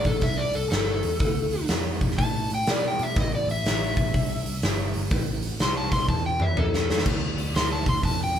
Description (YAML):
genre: blues rock power trio and southern rock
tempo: 123 BPM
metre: 4/4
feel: swing 65% on 8ths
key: A minor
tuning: A4 = 439 Hz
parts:
  - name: overdriven slide guitar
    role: melody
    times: 0.0-8.4 s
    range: A4 to C6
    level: -27 LUFS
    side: left 2 dB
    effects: none
  - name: vintage muted picked electric bass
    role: bass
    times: 0.0-8.4 s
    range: G1 to B2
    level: -29 LUFS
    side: equal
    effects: none
  - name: huge arena drum kit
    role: drums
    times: 0.0-8.4 s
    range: crash cymbal, hi-hat, kick drum, snare drum, toms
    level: -25 LUFS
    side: equal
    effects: none
room: light reverb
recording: band playing live in one room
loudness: -22 LUFS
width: side -9 dB against mid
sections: 0.0-8.4 A section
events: electric slide guitar solo 0.0-8.4; drum fill 6.1-7.1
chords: 0.0 Am; 1.2 Dm; 3.2 Am; 7.1 Dm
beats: 0.23 0.72 | 1.21 1.70 2.19 2.68 | 3.16 3.65 4.14 4.63 | 5.11 5.60 6.09 6.57 | 7.06 7.55 8.03